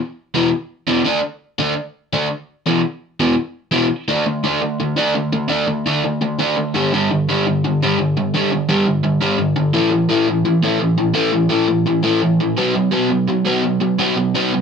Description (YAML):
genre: punk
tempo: 169 BPM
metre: 4/4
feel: straight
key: unclear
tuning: A4 = 445 Hz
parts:
  - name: overdriven electric guitar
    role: solo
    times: 0.3-14.6 s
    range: E2 to D4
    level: -15 LUFS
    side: equal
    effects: none
room: light reverb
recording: band playing live in one room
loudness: -16 LUFS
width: side -6 dB against mid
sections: 0.0-4.1 A section; 4.1-14.6 B section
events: none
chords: 0.0 E5; 1.1 D5; 2.7 E5; 4.1 D5; 6.7 G5; 9.8 A5; 12.6 B5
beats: 0.17 0.52 0.88 | 1.23 1.59 1.95 2.30 | 2.66 3.01 3.37 3.72 | 4.08 4.43 4.79 5.14 | 5.50 5.86 6.21 6.57 | 6.92 7.28 7.63 7.98 | 8.34 8.69 9.05 9.40 | 9.75 10.11 10.46 10.81 | 11.17 11.52 11.88 12.23 | 12.58 12.94 13.29 13.64 | 13.99 14.35